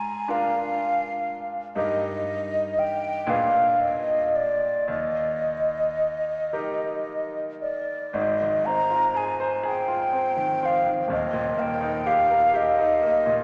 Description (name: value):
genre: classical, romantic duo for flute and grand piano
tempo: 36-42 BPM (dotted quarters)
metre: 6/8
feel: rubato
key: Eb major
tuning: A4 = 440 Hz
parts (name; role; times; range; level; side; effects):
- mellow hollow concert flute; melody; 0.0-13.4 s; D5 to Bb5; -25 LUFS; equal; none
- bright grand piano; accompaniment; 0.0-13.4 s; Eb1 to C5; -32 LUFS; equal; none
room: wet church reverb, RT60 3.4 s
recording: none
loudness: -24 LUFS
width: mono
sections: 0.0-8.1 A section; 8.1-13.4 B section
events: none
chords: 0.0 Bb7/Ab; 1.8 Eb/G; 3.3 Bb7b9; 4.9 Eb; 8.1 Ab6; 11.1 Eb